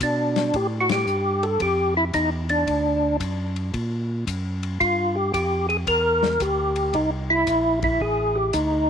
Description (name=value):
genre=soul jazz organ trio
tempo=112 BPM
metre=4/4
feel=swing 66% on 8ths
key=unclear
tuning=A4 = 440 Hz
part: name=percussive tonewheel organ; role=melody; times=0.0-8.9 s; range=D4 to Bb4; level=-21 LUFS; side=equal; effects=slow rotary speaker, chorus vibrato
part: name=tonewheel organ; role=bass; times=0.0-8.9 s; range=A1 to B2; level=-27 LUFS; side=equal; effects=none
part: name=warm soul drum kit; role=drums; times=0.0-8.7 s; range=hi-hat, kick drum, ride cymbal, snare drum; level=-32 LUFS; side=left 5 dB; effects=none
room=moderate spring reverb, RT60 2.8 s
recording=1960s-style stereo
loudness=-20 LUFS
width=side -7 dB against mid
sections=0.0-8.9 A section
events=band accent 0.8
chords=0.0 N.C.; 0.5 A5; 2.7 Daug; 4.8 Gm7; 6.9 C13